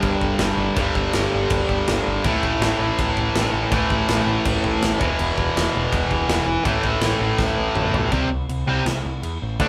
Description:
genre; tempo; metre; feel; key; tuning
punk rock; 163 BPM; 4/4; straight; unclear; A4 = 440 Hz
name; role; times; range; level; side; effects
distorted electric guitar; riff; 0.0-9.7 s; E2 to D4; -23 LUFS; equal; overdrive
growling picked electric bass; bass; 0.0-9.7 s; E1 to E2; -29 LUFS; equal; overdrive
big rock drum kit; drums; 0.0-9.7 s; crash cymbal, kick drum, snare drum, toms; -27 LUFS; equal; none
room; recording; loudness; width
light reverb; band playing live in one room; -21 LUFS; mono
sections
0.0-8.1 A section; 8.1-9.7 B section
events
drum fill 7.4-8.1; half time 8.1-9.7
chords
0.0 G5; 2.2 A5; 5.0 E5; 6.7 A5; 8.1 C5

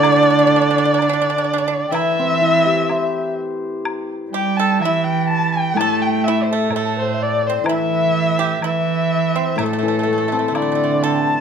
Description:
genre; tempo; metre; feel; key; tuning
chinese traditional, Chinese chamber ensemble; 63 BPM; 2/4; straight; A yu mode; A4 = 439 Hz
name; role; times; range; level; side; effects
dark erhu; melody; 0.0-11.4 s; A4 to A5; -20 LUFS; equal; none
dark cello; second line; 0.0-11.4 s; A2 to A3; -20 LUFS; right 8 dB; none
mellow xiao; second line; 0.0-11.4 s; A4 to A5; -23 LUFS; left 8 dB; none
pipa; second line; 0.0-11.4 s; A3 to A4; -26 LUFS; right 7 dB; none
hammered dulcimer; accompaniment; 0.0-11.4 s; A2 to C5; -24 LUFS; left 4 dB; none
woodblock; percussion; 0.0-10.8 s; none; -28 LUFS; left 4 dB; none
room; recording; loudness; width
light reverb; close, detailed microphones; -15 LUFS; side -7 dB against mid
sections
0.0-11.4 A section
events
none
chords
none

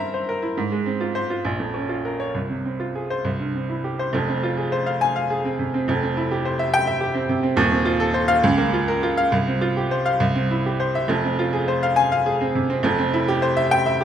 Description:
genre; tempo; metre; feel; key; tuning
classical, virtuoso piano study; 69 BPM (dotted quarters); 6/8; rubato; F minor; A4 = 441 Hz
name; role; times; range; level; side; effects
bright baby grand piano; solo; 0.0-14.0 s; Eb1 to Bb5; -19 LUFS; equal; none
room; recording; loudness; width
wet recital hall reverb, RT60 1.7 s; none; -19 LUFS; side -9 dB against mid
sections
0.0-4.2 A section; 4.2-14.0 B section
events
none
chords
0.0 C7/G; 0.6 Fm/Ab; 1.5 Bbm; 2.4 Fm/C; 3.3 C; 4.2 Fm; 5.9 C/F; 7.6 F7/Eb; 8.4 Bbm/Db; 9.3 Csus4; 10.2 C; 11.1 Fm; 12.9 C/F

